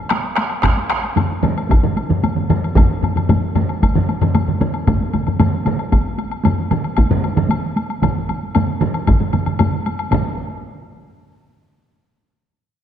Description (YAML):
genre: japanese traditional, taiko drum ensemble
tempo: 114 BPM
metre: 4/4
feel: straight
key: none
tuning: none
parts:
  - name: taiko ensemble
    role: percussion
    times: 0.1-10.4 s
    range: none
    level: -22 LUFS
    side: equal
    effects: none
  - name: taiko ensemble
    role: percussion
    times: 0.1-10.6 s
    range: none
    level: -21 LUFS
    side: left 2 dB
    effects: none
  - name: taiko ensemble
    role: percussion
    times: 0.1-10.6 s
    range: none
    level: -22 LUFS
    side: right 5 dB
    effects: none
  - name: woodblock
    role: percussion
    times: 0.1-10.4 s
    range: none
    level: -27 LUFS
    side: left 5 dB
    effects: none
  - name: taiko ensemble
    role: percussion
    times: 0.6-10.4 s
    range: none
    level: -17 LUFS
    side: equal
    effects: none
room: moderate concert hall reverb, RT60 1.9 s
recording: dark, warm production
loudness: -15 LUFS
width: side -9 dB against mid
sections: 0.0-10.1 A section; 10.1-12.2 B section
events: none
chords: none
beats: 0.10 0.64 1.17 | 1.70 2.23 2.76 3.29 | 3.82 4.35 4.87 5.40 | 5.93 6.45 6.98 7.50 | 8.03 8.55 9.07 9.60 | 10.12